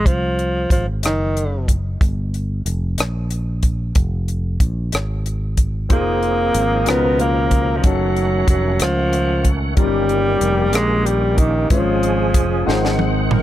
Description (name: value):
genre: slow gospel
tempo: 62 BPM (dotted quarters)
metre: 6/8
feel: straight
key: unclear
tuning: A4 = 442 Hz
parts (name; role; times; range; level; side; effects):
- warm alto saxophone; melody; 0.0-1.7, 5.9-13.0 s; Eb3 to Cb4; -19 LUFS; equal; none
- fingered electric bass; bass; 0.0-13.4 s; F1 to Db2; -21 LUFS; equal; none
- tight funk drum kit; drums; 0.1-13.4 s; hi-hat, kick drum, rim click, snare drum, toms; -18 LUFS; equal; none
- warm concert grand piano; accompaniment; 5.9-13.4 s; G2 to Gb5; -24 LUFS; left 6 dB; none
- bright tonewheel organ; sustained chords; 5.9-13.4 s; Cb3 to Gb5; -24 LUFS; right 5 dB; fast rotary speaker, chorus vibrato
- clear saxophone section; melody; 13.3-13.4 s; Eb4 to Bb4; -28 LUFS; right 1 dB; none
room: little or no reverb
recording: none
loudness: -16 LUFS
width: side -13 dB against mid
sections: 0.0-13.4 A section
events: drum fill 12.7-13.4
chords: 0.1 Cdim; 2.0 Fsus24; 4.0 Fsus4; 4.9 N.C.; 5.9 Fm7; 6.9 Db13; 7.8 Gbm6; 9.8 Eb7; 11.7 Db/Ab; 12.7 Ab7